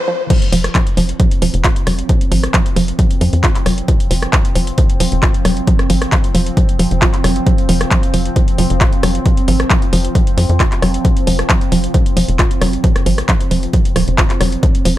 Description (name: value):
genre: driving peak-time techno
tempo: 134 BPM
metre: 4/4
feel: straight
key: unclear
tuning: A4 = 441 Hz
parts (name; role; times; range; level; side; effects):
- woody wave-folded pluck; riff; 0.1-14.9 s; F3 to F4; -19 LUFS; right 2 dB; chorus, tube saturation, sidechain pumping, tape echo
- deep dark ambient pad; drone; 0.3-15.0 s; F3 to C4; -23 LUFS; right 1 dB; chorus, built-in reverb, sidechain pumping
- electronic kick drum; drums; 0.3-14.7 s; none; -14 LUFS; equal; none
- techno drum kit; drums; 0.3-14.9 s; crash cymbal, handclaps, hi-hat, rim click; -20 LUFS; left 1 dB; none
- tight sequencer bass; bass; 0.5-15.0 s; Eb1 to F2; -16 LUFS; equal; sidechain pumping
room: little or no reverb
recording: high-pass filter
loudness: -12 LUFS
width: side -14 dB against mid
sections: 0.3-15.0 A section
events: break 0.0-0.3; drop 0.3-15.0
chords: 0.3 F5